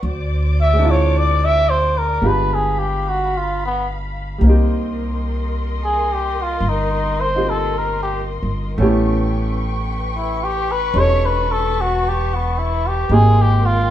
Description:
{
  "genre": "jazz ballad",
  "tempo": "55 BPM",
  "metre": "4/4",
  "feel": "swing 67% on 8ths",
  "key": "unclear",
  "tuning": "A4 = 440 Hz",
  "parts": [
    { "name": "clear grand piano", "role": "accompaniment", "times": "0.0-13.9 s", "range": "G3 to A4", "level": "-22 LUFS", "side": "right 1 dB", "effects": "none" },
    { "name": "muted studio string section", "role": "sustained chords", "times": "0.0-13.9 s", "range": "Bb4 to D6", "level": "-28 LUFS", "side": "left 3 dB", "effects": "none" },
    { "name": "upright bass", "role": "bass", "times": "0.0-13.9 s", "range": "E1 to D2", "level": "-19 LUFS", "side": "equal", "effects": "none" },
    { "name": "trumpet with cup mute", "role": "melody", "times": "0.6-13.9 s", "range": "B3 to Fb5", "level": "-19 LUFS", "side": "equal", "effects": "none" }
  ],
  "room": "moderate studio reverb, RT60 0.5 s",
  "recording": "band playing live in one room",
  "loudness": "-16 LUFS",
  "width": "side -12 dB against mid",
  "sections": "0.0-13.9 A section",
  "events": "muted trumpet solo 0.0-13.9",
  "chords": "0.0 Dm7b5; 2.2 G7b9; 4.4 Cm7; 8.8 A9; 13.1 Abmaj9"
}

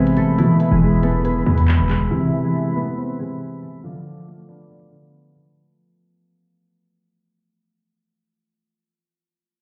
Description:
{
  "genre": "hip hop, drill",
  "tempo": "139 BPM",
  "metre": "4/4",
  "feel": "half-time",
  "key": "unclear",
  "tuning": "A4 = 441 Hz",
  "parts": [
    { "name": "concert harp", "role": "melody", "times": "0.0-8.7 s", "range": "E3 to B4", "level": "-23 LUFS", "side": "equal", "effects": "low-pass filter, tape echo" },
    { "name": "dark concert grand piano", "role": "accompaniment", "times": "0.0-5.6 s", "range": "B2 to D5", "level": "-24 LUFS", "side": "equal", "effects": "low-pass filter" },
    { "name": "warm woodwind section", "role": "sustained chords", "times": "0.0-5.5 s", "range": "G#4 to D6", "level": "-33 LUFS", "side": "equal", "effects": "low-pass filter" },
    { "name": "hard-hitting 808-style bass", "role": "bass", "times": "0.0-2.1 s", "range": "E1 to E2", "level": "-21 LUFS", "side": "equal", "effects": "none" },
    { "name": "drill drum kit", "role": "drums", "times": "0.1-2.0 s", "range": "handclaps, hi-hat", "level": "-33 LUFS", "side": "equal", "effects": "none" }
  ],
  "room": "moderate concert hall reverb, RT60 1.9 s, small room ambience",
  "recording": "heard muffled through a wall, club reverb, EQ",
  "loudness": "-18 LUFS",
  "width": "mono",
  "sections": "0.0-5.6 A section",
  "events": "fade-out 0.0-5.6; filter sweep 0.0-5.6",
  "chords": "0.4 E; 2.1 Amadd9; 3.8 Dm"
}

